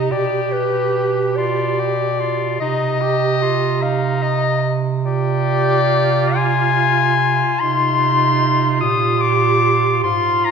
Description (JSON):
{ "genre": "classical, lyrical piece for single-reed quartet", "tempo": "49 BPM (dotted quarters)", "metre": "6/8", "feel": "rubato", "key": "C minor", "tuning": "A4 = 440 Hz", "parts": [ { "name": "mellow clarinet", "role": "melody", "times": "0.0-10.5 s", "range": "B4 to Eb6", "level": "-18 LUFS", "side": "left 6 dB", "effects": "none" }, { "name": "mellow alto saxophone", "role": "second line", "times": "0.0-10.5 s", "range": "Eb4 to G4", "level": "-23 LUFS", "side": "right 6 dB", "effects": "none" }, { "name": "warm tenor saxophone", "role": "accompaniment", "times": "0.0-10.5 s", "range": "Eb4 to G4", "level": "-23 LUFS", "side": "left 1 dB", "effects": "none" }, { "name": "mellow bass clarinet", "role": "bass", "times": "0.0-10.5 s", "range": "Ab2 to C3", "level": "-20 LUFS", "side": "right 6 dB", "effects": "none" } ], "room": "wet concert hall reverb, RT60 1.9 s", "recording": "minimal, uncompressed stereo recording", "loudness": "-15 LUFS", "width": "side -6 dB against mid", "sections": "0.0-10.5 A section", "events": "none", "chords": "0.1 G/B; 2.6 Cm; 5.0 Fm/C; 7.6 Cm; 8.8 Gm/Bb" }